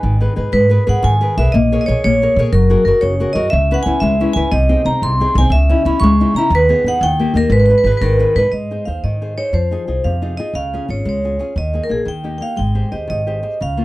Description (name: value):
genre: italian folk, Italian serenade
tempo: 119 BPM (dotted quarters)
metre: 6/8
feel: rubato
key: G# minor, Ab major from 8.5 s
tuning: A4 = 440 Hz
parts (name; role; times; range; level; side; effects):
- vibraphone with medium hard mallets; melody; 0.0-13.8 s; Ab4 to C#6; -17 LUFS; right 1 dB; none
- flamenco guitar; accompaniment; 0.0-13.8 s; B#2 to C#5; -20 LUFS; left 2 dB; none
- upright bass; bass; 0.0-13.8 s; F#1 to C#3; -17 LUFS; equal; none
room: light reverb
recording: dry, close 1970s-style studio recording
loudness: -13 LUFS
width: side -18 dB against mid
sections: 0.5-8.5 A section; 8.5-13.8 B section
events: none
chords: 0.0 G#m; 0.5 G#madd9; 1.5 A#m7; 2.5 F#add9; 3.5 C#m7; 4.5 G#/B#; 5.5 C#madd9; 6.5 G#m/D#; 7.0 D#; 7.5 G#m; 8.5 Ab; 9.5 Fm7; 10.5 Db; 11.6 Ebsus4; 12.1 Eb; 12.6 Abmaj7